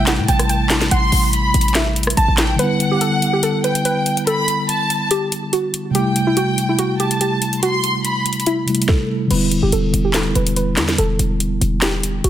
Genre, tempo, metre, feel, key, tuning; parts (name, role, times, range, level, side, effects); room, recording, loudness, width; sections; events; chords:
hip hop, trap; 143 BPM; 4/4; half-time; E minor; A4 = 441 Hz
soft round pluck; melody; 0.0-12.3 s; E4 to A5; -22 LUFS; right 1 dB; chorus, low-pass filter
warm studio violin section; second line; 0.0-8.4 s; F#5 to C6; -22 LUFS; equal; digital delay
mellow tine electric piano; accompaniment; 0.0-12.3 s; C3 to E4; -21 LUFS; equal; medium stereo tremolo, low-pass filter
short 808-style bass; bass; 0.0-2.6, 9.3-12.3 s; E1 to A2; -19 LUFS; equal
trap drum kit; drums; 0.1-12.3 s; crash cymbal, handclaps, hi-hat, kick drum, rim click, snare drum; -20 LUFS; left 1 dB
light reverb; dense, heavily limited modern master; -15 LUFS; side -11 dB against mid
0.0-2.6 A section; 2.6-9.3 B section; 9.3-12.3 C section
0.0 Am7; 2.6 Em7; 5.9 Am7; 9.3 Em7